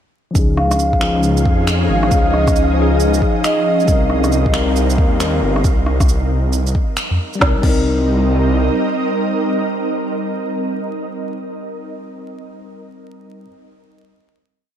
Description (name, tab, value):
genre	future garage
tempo	136 BPM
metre	4/4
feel	swing 63% on 16ths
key	C phrygian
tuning	A4 = 440 Hz
part	bell-like tine electric piano	accompaniment	0.3-13.5 s	F3 to Bb4	-22 LUFS	left 4 dB	sidechain pumping, low-pass filter, tape echo
part	ethereal airy pad	sustained chords	1.2-11.0 s	F3 to Eb5	-22 LUFS	right 2 dB	ensemble chorus, built-in reverb, sidechain pumping
part	swelling detuned saw bass	bass	0.4-8.7 s	G1 to F2	-17 LUFS	equal	sidechain pumping
part	electronic kick drum	drums	0.4-7.8 s	none	-16 LUFS	equal	none
part	organic electronic drum kit	drums	0.4-7.8 s	crash cymbal, finger snaps, rim click, shaker, snare drum	-23 LUFS	right 1 dB	none
part	wind-like tuned noise texture	texture	0.9-5.7 s	F5	-28 LUFS	right 3 dB	built-in reverb
part	vibraphone with soft mallets	melody	0.6-3.9 s	Eb5 to F5	-21 LUFS	right 1 dB	tape echo
room	light reverb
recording	vinyl crackle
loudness	-14 LUFS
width	side -9 dB against mid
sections	0.4-7.4 groove; 7.4-10.9 final chord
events	filter sweep on tine electric piano 0.4-5.6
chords	0.4 Dbadd9; 3.9 Cm7